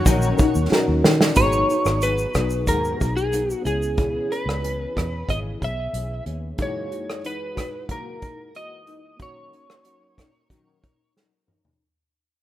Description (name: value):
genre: indie pop, bedroom pop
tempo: 92 BPM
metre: 4/4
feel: straight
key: unclear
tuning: A4 = 440 Hz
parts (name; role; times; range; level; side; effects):
- electric slide guitar; melody; 0.0-11.1 s; G#4 to E5; -25 LUFS; equal; analog chorus
- nylon-string guitar; accompaniment; 0.0-11.8 s; F#2 to A#4; -28 LUFS; left 5 dB; ensemble chorus, warbly pitch drift
- reed electric piano; accompaniment; 0.0-11.8 s; F#2 to A#5; -30 LUFS; right 2 dB; cassette tape
- lush unison pad; sustained chords; 0.0-1.3 s; A#2 to F#4; -30 LUFS; equal; chorus
- vintage muted fingered electric bass; bass; 0.1-6.5 s; G#1 to D#3; -25 LUFS; equal; none
- unplugged drum kit; drums; 0.1-11.8 s; hi-hat, kick drum, rim click, shaker, snare drum, toms; -22 LUFS; right 1 dB; none
room: light reverb, studio ambience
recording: rough home demo mix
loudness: -20 LUFS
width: side -13 dB against mid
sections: 0.0-1.4 A section; 1.4-11.8 B section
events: drum fill 0.7-1.4, 11.2-11.8; fade-out 1.4-11.8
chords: 0.0 D#m7; 1.4 G#m7; 3.6 C#m7; 6.6 F#13; 9.2 D#m7